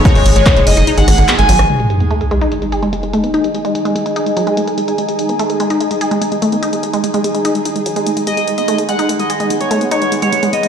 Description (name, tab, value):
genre	psychedelic trance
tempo	146 BPM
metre	4/4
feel	straight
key	G# phrygian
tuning	A4 = 438 Hz
part	overtone-sweeping drone	sustained chords	0.0-10.7 s	G#3 to G#4	-21 LUFS	right 1 dB	chorus, built-in reverb, sidechain pumping
part	wide unison pluck	riff	0.0-10.7 s	F#3 to A4	-18 LUFS	equal	auto-pan, sidechain pumping, ping-pong delay
part	ethereal airy pad	texture	0.0-10.7 s	D#4 to G#5	-21 LUFS	right 2 dB	ensemble chorus, built-in reverb, tremolo, sidechain pumping
part	overdriven synth lead	melody	0.1-1.6, 8.3-10.7 s	C#5 to G#5	-16 LUFS	equal	phaser, sidechain pumping, digital delay
part	big-room dance drum kit	drums	0.1-10.7 s	handclaps, hi-hat, ride cymbal, rim click	-22 LUFS	left 1 dB	low-pass filter on hats, low-pass filter on cymbals, low-pass filter on snare
part	electronic kick drum	drums	0.1-0.5 s	none	-10 LUFS	equal	none
part	metallic wobble bass	second line	0.2-1.6 s	F#3 to G#3	-29 LUFS	left 4 dB	none
part	tight sequencer bass	bass	0.2-1.7 s	F#1 to G#1	-11 LUFS	equal	none
part	sub drop	sound effects	1.7-3.3 s	none	-17 LUFS	equal	none
room	light reverb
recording	played on a big sound system in a bare room, large studio reverb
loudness	-12 LUFS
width	side -8 dB against mid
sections	0.0-1.7 A section; 1.7-10.7 B section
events	drop 0.0-1.7; kick drops out 0.9-1.7; band accent 1.3; impact 1.7-3.3; filter sweep on synth drone 1.7-10.7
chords	0.0 G#5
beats	| 0.05 0.46 0.87 1.28 | 1.70 2.11 2.52 2.93 | 3.34 3.75 4.16 4.57 | 4.98 5.39 5.80 6.22 | 6.63 7.04 7.45 7.86 | 8.27 8.68 9.09 9.50 | 9.91 10.32